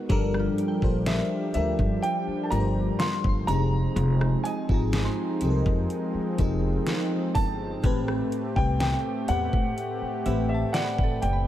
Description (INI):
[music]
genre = contemporary R&B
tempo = 62 BPM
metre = 4/4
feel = straight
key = unclear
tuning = A4 = 443 Hz
[part]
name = FM electric piano with soft pad layer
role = accompaniment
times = 0.0-11.5 s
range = A2 to C5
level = -30 LUFS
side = left 2 dB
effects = chorus
[part]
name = warm analog pad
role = sustained chords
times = 0.0-11.5 s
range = F3 to G4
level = -31 LUFS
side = right 1 dB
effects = chorus, sidechain pumping
[part]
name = glassy synth bell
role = texture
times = 0.0-11.5 s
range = F4 to C6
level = -40 LUFS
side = right 1 dB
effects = chorus, tremolo, diffuse ambient delay
[part]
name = upright bass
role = bass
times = 0.1-11.5 s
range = F1 to A2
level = -27 LUFS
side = equal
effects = none
[part]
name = smooth R&B drum kit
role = drums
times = 0.1-11.4 s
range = hi-hat, kick drum, rim click, snare drum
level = -28 LUFS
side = equal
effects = none
[part]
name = dark concert grand piano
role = melody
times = 1.1-11.5 s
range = E5 to C6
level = -31 LUFS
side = equal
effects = lush chorus, diffuse ambient delay
[sound]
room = light reverb, digital ambience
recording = none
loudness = -23 LUFS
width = side -12 dB against mid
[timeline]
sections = 0.0-11.5 A section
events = none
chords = 0.1 Gm7; 3.5 Fm7; 7.8 Am7